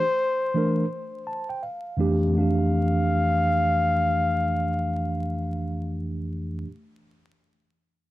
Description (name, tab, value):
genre	hip hop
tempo	84 BPM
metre	4/4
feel	swing 62% on 16ths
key	F major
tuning	A4 = 440 Hz
part	breathy flugelhorn	melody	0.0-6.0 s	C5 to F5	-25 LUFS	left 2 dB	none
part	mellow tine electric piano	accompaniment	0.0-6.7 s	F2 to A5	-24 LUFS	right 1 dB	slow stereo tremolo
room	digital ambience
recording	dry, close 1970s-style studio recording, vinyl crackle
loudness	-22 LUFS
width	side -16 dB against mid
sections	0.0-2.4 A section; 2.4-5.2 B section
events	tine electric piano fill 0.9-2.4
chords	0.0 E7(b5, no3); 1.6 F69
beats	0.21 0.92 1.64 | 2.35 3.07 3.78 4.50